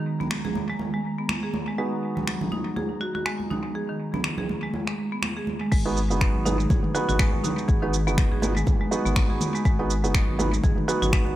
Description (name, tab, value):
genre	afro house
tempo	122 BPM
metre	4/4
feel	swing 57% on 16ths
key	G# minor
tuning	A4 = 439 Hz
part	ethereal airy pad	sustained chords	0.0-5.7 s	D#3 to A#5	-35 LUFS	right 2 dB	ensemble chorus, built-in reverb, phaser, sidechain pumping
part	marimba with hard mallets	arpeggios	0.0-11.2 s	D#3 to G#4	-30 LUFS	equal	sidechain pumping, low-pass filter, analog delay
part	felt-muted upright piano	stabs	0.0-11.4 s	B3 to B4	-29 LUFS	right 3 dB	sidechain pumping, low-pass filter, analog delay
part	congas	percussion	0.2-11.4 s	none	-31 LUFS	right 1 dB	none
part	afro-pop drum kit	drums	0.3-11.2 s	crash cymbal, finger snaps, shaker, toms	-31 LUFS	equal	small room ambience, analog delay
part	round analog bass	bass	5.7-11.3 s	F#1 to G#1	-27 LUFS	equal	sidechain pumping
part	electronic kick drum	drums	5.7-11.2 s	none	-22 LUFS	equal	small room ambience
room	light reverb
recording	echo-heavy mix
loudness	-22 LUFS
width	side -14 dB against mid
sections	0.0-5.7 A section; 5.7-11.4 B section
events	drop 5.7-11.4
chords	0.0 G#m7